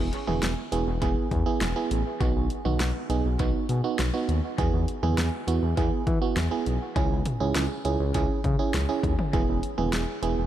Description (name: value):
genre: synth-pop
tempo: 101 BPM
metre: 4/4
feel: straight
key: E major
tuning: A4 = 440 Hz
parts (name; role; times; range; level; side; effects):
- FM electric piano; accompaniment; 0.0-10.4 s; B3 to G#4; -28 LUFS; right 6 dB; chorus, dub echo
- smooth synth bass; bass; 0.0-10.5 s; E1 to E3; -27 LUFS; left 1 dB; none
- deep house drum kit; drums; 0.1-10.4 s; hi-hat, kick drum, snare drum, toms; -29 LUFS; left 1 dB; dub echo
room: light reverb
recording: echo-heavy mix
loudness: -24 LUFS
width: side -12 dB against mid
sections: 0.0-10.5 A section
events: none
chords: 0.0 E; 2.2 B; 4.6 E; 7.0 C#m; 9.3 E